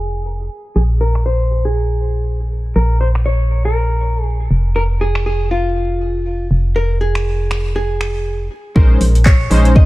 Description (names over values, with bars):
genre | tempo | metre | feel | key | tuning
deep house | 120 BPM | 4/4 | swing 58% on 16ths | Bb minor | A4 = 439 Hz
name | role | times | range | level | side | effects
vintage hollow-body jazz guitar | melody | 0.0-9.9 s | F4 to Eb5 | -22 LUFS | equal | digital delay
organ-like FM bass | bass | 0.0-9.9 s | F1 to Bb1 | -16 LUFS | equal | sidechain pumping
deep house drum kit | drums | 1.2-9.7 s | finger snaps, handclaps, hi-hat | -25 LUFS | equal | overdrive
warm analog keys | stabs | 8.8-9.9 s | Ab3 to C5 | -17 LUFS | equal | chorus, vintage 12-bit sampler grit, sidechain pumping
electronic kick drum | drums | 8.8-9.9 s | none | -9 LUFS | equal | overdrive
room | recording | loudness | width
little or no reverb | vinyl crackle, low-pass filter | -14 LUFS | side -18 dB against mid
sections
0.0-8.8 A section; 8.8-9.9 B section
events
filter sweep 0.0-8.8; drop 8.8-9.9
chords
0.0 Fm; 0.8 Bb7(no3); 4.5 Fm; 8.8 Bbm11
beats
0.26 | 0.76 1.26 1.76 2.26 | 2.76 3.26 3.76 4.26 | 4.76 5.26 5.76 6.26 | 6.76 7.26 7.76 8.26 | 8.76 9.26 9.76